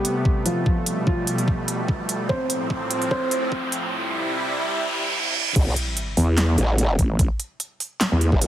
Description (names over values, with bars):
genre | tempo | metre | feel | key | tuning
heavy wobble dubstep | 147 BPM | 4/4 | swing 54% on 16ths, half-time | A minor | A4 = 439 Hz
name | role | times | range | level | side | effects
dark baby grand piano | melody | 0.0-3.9 s | F3 to C5 | -26 LUFS | equal | tape echo
supersaw pad | sustained chords | 0.0-5.5 s | A2 to E4 | -27 LUFS | right 1 dB | sidechain pumping
big-room dance drum kit | drums | 0.0-8.5 s | crash cymbal, handclaps, hi-hat, snare drum | -25 LUFS | right 1 dB | overdrive, high-pass filter on hats, high-pass filter on toms, high-pass filter on cymbals, high-pass filter on snare, high-pass filter on room
riser, reverse cymbal and sub drop | sound effects | 1.3-7.2 s | none | -28 LUFS | right 1 dB | none
electronic kick drum | drums | 0.3-8.4 s | none | -22 LUFS | equal | overdrive
growl bass | bass | 5.6-8.5 s | E1 to A1 | -20 LUFS | equal | chorus, overdrive
vowel-sweep wobble bass | bass | 6.2-8.3 s | A1 to E2 | -19 LUFS | equal | chorus, overdrive
room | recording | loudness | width
light reverb | heavily compressed radio sound, high-pass filter | -20 LUFS | side -12 dB against mid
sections
0.0-5.6 A section; 5.6-8.5 B section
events
build-up 0.0-5.6; filter sweep 0.0-5.6; riser 1.3-5.6; drum fill 2.3-3.9; reverse cymbal 4.7-5.6; drop 5.6-8.5; impact 5.6-7.2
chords
0.0 Amadd9; 0.7 Gadd9; 2.3 F/A; 3.9 C; 5.6 A5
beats
0.25 | 0.66 1.07 1.48 1.89 | 2.29 2.70 3.11 3.52 | 3.93 4.33 4.74 5.15 | 5.56 5.97 6.38 6.78 | 7.19 7.60 8.01 8.42